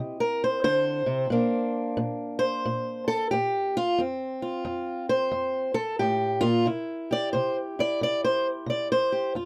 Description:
acoustic country blues, solo or duo; 89 BPM; 4/4; swing 65% on 8ths; A4 = 441 Hz
fingerpicked acoustic archtop guitar; solo; 0.0-9.5 s; F2 to Eb5; -27 LUFS; equal
moderate booth ambience, RT60 0.2 s; dark, warm production; -27 LUFS; mono
0.0-9.4 A section
steel-string acoustic guitar solo 0.0-9.4
0.0 C; 1.3 Bb; 4.0 F; 6.7 C
0.63 | 1.30 1.97 2.65 3.32 | 3.99 4.66 5.33 6.00 | 6.67 7.34 8.01 8.68 | 9.35

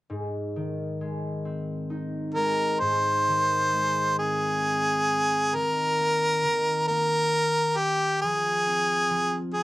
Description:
children's music, lullaby; 44 BPM (dotted quarters); 6/8; rubato; Ab major; A4 = 440 Hz
concert harp; accompaniment; 0.1-9.6 s; Ab2 to Eb4; -31 LUFS; left 1 dB; cassette tape
clear harmonica; melody; 2.3-9.6 s; G4 to C5; -22 LUFS; equal; cassette tape
light reverb; home recording on cassette; -23 LUFS; side -18 dB against mid
0.1-2.8 A section; 2.8-9.6 B section
0.1 Ab; 5.5 Eb5; 8.2 Fm
| 0.10 1.45 | 2.80 4.17 | 5.53 6.88 | 8.22 9.55

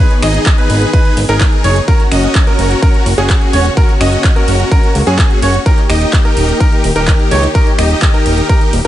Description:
EDM, festival progressive house; 127 BPM; 4/4; straight; A4 = 440 Hz
dark symphonic string section; sustained chords; 0.0-8.9 s; C#3 to G#4; -22 LUFS; left 3 dB; sidechain pumping
clear baby grand piano; arpeggios; 0.0-8.9 s; G#4 to D#5; -19 LUFS; right 2 dB; sidechain pumping, dub echo
supersaw chords; riff; 0.0-8.9 s; C#4 to D#5; -16 LUFS; equal; sidechain pumping, dub echo
big-room dance drum kit; drums; 0.1-8.9 s; finger snaps, handclaps, hi-hat, ride cymbal; -21 LUFS; right 1 dB; overdrive
fat analog bass; bass; 0.2-8.9 s; D#1 to F#2; -14 LUFS; equal; sidechain pumping
electronic kick drum; drums; 0.5-8.6 s; -11 LUFS; equal; overdrive
little or no reverb; nothing above 10.8 kHz; -9 LUFS; side -13 dB against mid
0.0-8.9 A section
0.0 G#m; 1.9 F#; 5.7 D#
0.46 0.94 1.41 | 1.88 2.35 2.82 3.30 | 3.77 4.24 4.71 5.19 | 5.66 6.13 6.60 7.08 | 7.55 8.02 8.49

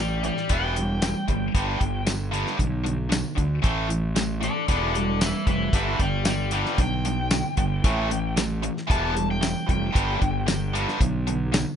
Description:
classic rock; 114 BPM; 4/4; straight; A4 = 441 Hz
overdriven slide guitar; melody; 0.0-10.7 s; A4 to A5; -29 LUFS; left 3 dB
biting overdriven guitar; riff; 0.0-11.8 s; G2 to B3; -27 LUFS; right 1 dB
fuzz fingered electric bass; bass; 0.0-11.6 s; E1 to D2; -28 LUFS; equal; overdrive
damped 70s drum kit; drums; 0.2-11.7 s; hi-hat, kick drum, snare drum, tambourine; -25 LUFS; equal
little or no reverb; nothing above 10.9 kHz; -22 LUFS; side -8 dB against mid
0.0-11.8 A section
electric slide guitar solo 0.0-11.8
0.0 A5; 0.5 Em; 1.6 G; 3.6 A5; 4.7 Em; 5.7 G; 7.8 A5; 8.9 Em; 10.0 G
0.51 1.03 | 1.55 2.08 2.60 3.12 | 3.65 4.17 4.70 5.22 | 5.75 6.27 6.80 7.32 | 7.85 8.38 8.90 9.43 | 9.96 10.49 11.01 11.54

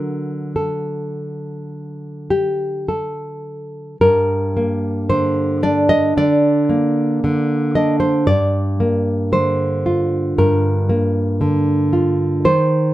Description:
romantic piece for solo classical guitar; 50-58 BPM; 4/4; rubato; G minor; A4 = 439 Hz
nylon-string guitar; solo; 0.0-12.9 s; G2 to Eb5; -16 LUFS; equal
light reverb; -15 LUFS; side -15 dB against mid
0.0-4.0 A section; 4.0-12.9 A section
0.0 D; 4.0 Gm; 8.3 Bb/G
0.57 1.74 2.89 | 4.01 5.08 6.15 7.23 | 8.27 9.33 10.38 11.42 | 12.46

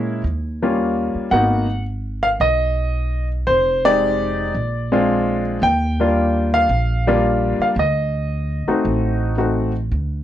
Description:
jazz; 112 BPM; 4/4; swing 69% on 8ths; Eb major; A4 = 440 Hz
clear grand piano; melody; 0.0-9.7 s; G3 to G5; -18 LUFS; left 1 dB
upright bass; bass; 0.0-10.2 s; F1 to Bb2; -22 LUFS; right 1 dB
light reverb; worn, warbling old tape, cassette tape, warbly pitch drift, nothing above 10.3 kHz; -17 LUFS; side -11 dB against mid
0.0-9.9 A section
0.2 Eb7; 1.3 Abm7; 3.5 Fm7; 4.5 Bb7; 5.6 Ebmaj9; 7.8 D7b9
0.24 0.78 | 1.32 1.86 2.40 2.93 | 3.47 4.01 4.55 5.09 | 5.62 6.16 6.70 7.23 | 7.77 8.31 8.84 9.38 | 9.91

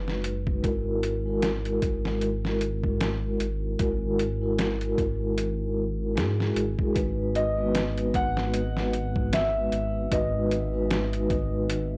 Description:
trip hop; 76 BPM; 4/4; swing 57% on 16ths; G# minor; A4 = 438 Hz
vibraphone with soft mallets; accompaniment; 0.0-12.0 s; G#3 to B4; -30 LUFS; equal; tremolo, low-pass filter, tape echo
dark detuned saw bass; bass; 0.0-12.0 s; F#1 to G#2; -32 LUFS; equal; tube saturation
trip hop sampler-style drum kit; drums; 0.1-11.9 s; hi-hat, kick drum, snare drum; -32 LUFS; equal; overdrive
felt-muted upright piano; melody; 7.4-11.7 s; D#5 to F#5; -32 LUFS; equal; tape echo
little or no reverb; dry, gritty hardware recording, cassette tape, faint mains hum; -27 LUFS; mono
0.0-12.0 A section
0.0 G#m7; 0.6 F#9/G#; 7.0 G#m7
| 0.64 1.43 2.22 3.01 | 3.80 4.59 5.38 6.17 | 6.96 7.75 8.53 9.32 | 10.11 10.90 11.69

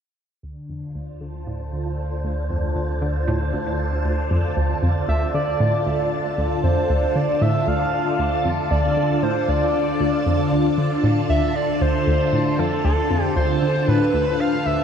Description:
ambient, sequencer-driven space music; 116 BPM; 4/4; straight; D minor; A4 = 440 Hz
phased string machine; sustained chords; 0.4-14.8 s; D3 to A5; -23 LUFS; left 1 dB; ensemble chorus, phaser
analog pluck; riff; 0.4-14.8 s; D2 to D3; -23 LUFS; equal; chorus, cassette tape, tape echo
warm sub bass; bass; 0.4-4.5 s; D2; -26 LUFS; equal
wind-like tuned noise texture; texture; 1.5-4.6 s; C5; -34 LUFS; right 4 dB; built-in reverb
pulse-width lead; melody; 5.1-14.8 s; A4 to F5; -23 LUFS; right 1 dB; chorus, tape echo
wet huge ambient reverb, RT60 8.2 s; dark, warm production; -18 LUFS; side -7 dB against mid
0.4-4.6 A section; 4.6-14.8 B section
fade-in on synth arpeggio sound 0.4-4.6; fade-in on sub bass 0.4-4.6; fade-in on synth texture 0.4-4.6; filter sweep on string machine 0.4-4.6
0.4 Dm
| 0.43 0.95 1.47 1.99 | 2.50 3.02 3.54 4.05 | 4.57 5.09 5.61 6.12 | 6.64 7.16 7.67 8.19 | 8.71 9.23 9.74 10.26 | 10.78 11.29 11.81 12.33 | 12.85 13.36 13.88 14.40

